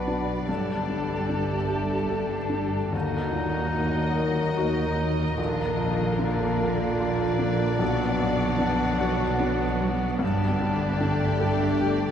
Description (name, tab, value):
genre	cinematic, emotional film score for orchestra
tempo	74 BPM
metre	3/4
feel	rubato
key	unclear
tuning	A4 = 440 Hz
part	warm studio violin section	melody	0.0-12.1 s	D5 to D#5	-35 LUFS	left 3 dB	none
part	bright clarinet	second line	0.0-12.1 s	D4 to D#4	-34 LUFS	equal	none
part	bright concert flute	second line	0.0-12.1 s	E#5 to A5	-36 LUFS	equal	none
part	warm studio violin section	second line	0.0-12.1 s	F#4 to B4	-34 LUFS	left 1 dB	none
part	felt-muted upright piano	accompaniment	0.0-12.1 s	A#1 to B4	-30 LUFS	left 1 dB	none
part	warm studio viola section	accompaniment	0.0-12.1 s	D3 to G4	-35 LUFS	right 2 dB	none
part	dark French horn section	sustained chords	0.0-12.1 s	D3 to D#4	-33 LUFS	equal	none
part	concert harp	arpeggios	0.0-12.1 s	G2 to B4	-32 LUFS	left 3 dB	none
part	rich studio cello section	bass	0.0-12.1 s	D#2 to B2	-32 LUFS	right 2 dB	none
part	warm studio double bass section	bass	0.0-12.1 s	G1 to D#2	-30 LUFS	right 2 dB	none
room	wet cathedral reverb, RT60 5.4 s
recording	recorded in a church or concert hall, faint mains hum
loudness	-23 LUFS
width	side -8 dB against mid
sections	0.0-12.1 A section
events	none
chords	0.5 Gsus2; 2.9 D#m; 5.4 A#; 7.8 Bm; 10.2 Gsus2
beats	| 0.49 1.31 2.12 | 2.94 3.76 4.57 | 5.38 6.20 7.01 | 7.81 8.61 9.41 | 10.22 11.03 11.83